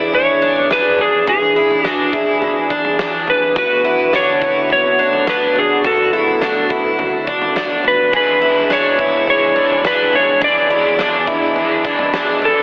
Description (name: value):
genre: dream pop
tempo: 105 BPM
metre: 4/4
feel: straight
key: E mixolydian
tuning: A4 = 440 Hz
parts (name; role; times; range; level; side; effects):
- electric slide guitar; melody; 0.0-12.6 s; G#4 to D5; -14 LUFS; equal; digital delay
- warm analog pad; sustained chords; 0.0-12.6 s; D2 to G#4; -22 LUFS; equal; chorus
- picked twelve-string acoustic guitar; arpeggios; 0.0-12.6 s; D4 to G#4; -18 LUFS; equal; wide subtle chorus, digital delay
- huge arena drum kit; drums; 0.1-12.6 s; kick drum, snare drum, toms; -25 LUFS; equal; none
- crunchy overdriven guitar; accompaniment; 8.1-12.6 s; E2 to E4; -22 LUFS; equal; harmonic tremolo, analog chorus
room: moderate huge ambient reverb, RT60 4.3 s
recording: heavily compressed radio sound, telephone sound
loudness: -12 LUFS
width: side -37 dB against mid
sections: 0.0-12.6 A section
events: none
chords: 0.0 E7; 3.6 D6; 8.1 E7